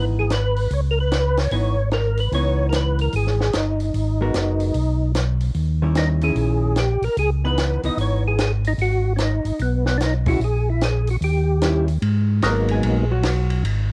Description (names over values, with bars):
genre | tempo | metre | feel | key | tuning
soul jazz organ trio | 149 BPM | 4/4 | swing 64% on 8ths | G# minor | A4 = 441 Hz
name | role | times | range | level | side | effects
percussive tonewheel organ | melody | 0.0-13.0 s | F#3 to D#5 | -26 LUFS | equal | slow rotary speaker, chorus vibrato, cassette tape
hollow-body jazz guitar | accompaniment | 0.0-13.6 s | D#3 to A#4 | -29 LUFS | equal | cassette tape
mellow tonewheel organ | bass | 0.0-13.9 s | F#1 to G#2 | -23 LUFS | equal | chorus vibrato, slow rotary speaker
compact cocktail drum kit | drums | 0.3-13.8 s | hi-hat, kick drum, ride cymbal, snare drum | -30 LUFS | equal | cassette tape
room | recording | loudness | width
small room ambience | home recording on cassette | -21 LUFS | mono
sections
0.0-12.0 A section; 12.0-13.9 B section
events
hollow-body jazz guitar solo 12.0-13.9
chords
0.0 C#m9; 3.9 G#m9; 5.6 D#7b9; 7.2 C#m9; 8.8 G#m; 10.4 F#9/A# (rootless); 11.2 D#7b9; 12.0 G#m9